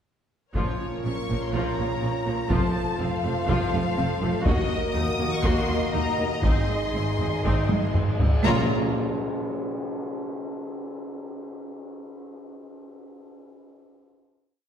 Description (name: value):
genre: cinematic, epic orchestral film score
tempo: 122 BPM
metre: 4/4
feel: straight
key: Bb minor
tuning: A4 = 440 Hz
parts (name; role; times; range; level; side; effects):
- rich symphonic violin section; melody; 0.5-8.7 s; Db5 to Eb6; -32 LUFS; left 4 dB; none
- rich symphonic cello section; bass; 0.5-8.7 s; Eb2 to Bb2; -30 LUFS; right 2 dB; none
- taiko ensemble; drums; 0.5-8.4 s; none; -26 LUFS; equal; none
- warm symphonic violin section; second line; 0.6-8.7 s; F4 to Eb5; -33 LUFS; left 1 dB; none
- rich symphonic viola section; accompaniment; 0.6-8.7 s; F3 to Gb4; -32 LUFS; equal; none
- mellow French horn section; sustained chords; 0.6-8.7 s; F3 to Gb4; -32 LUFS; equal; none
- clear symphonic double bass section; bass; 0.6-8.7 s; F1 to Eb2; -30 LUFS; right 1 dB; none
- timpani; percussion; 0.6-1.2, 8.4-8.7 s; Bb2; -34 LUFS; left 1 dB; none
- cymbal swell and tam-tam; percussion; 4.5-10.4 s; none; -33 LUFS; equal; none
room: wet scoring stage reverb, RT60 1.6 s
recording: heard from further back in the room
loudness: -23 LUFS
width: side -8 dB against mid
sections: 0.6-8.4 theme; 8.4-10.4 final chord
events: drum fill 7.7-8.4; band accent 8.4-8.9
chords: 0.6 Bbm; 2.5 F; 4.5 Ebm; 6.4 Ab; 8.4 Bb5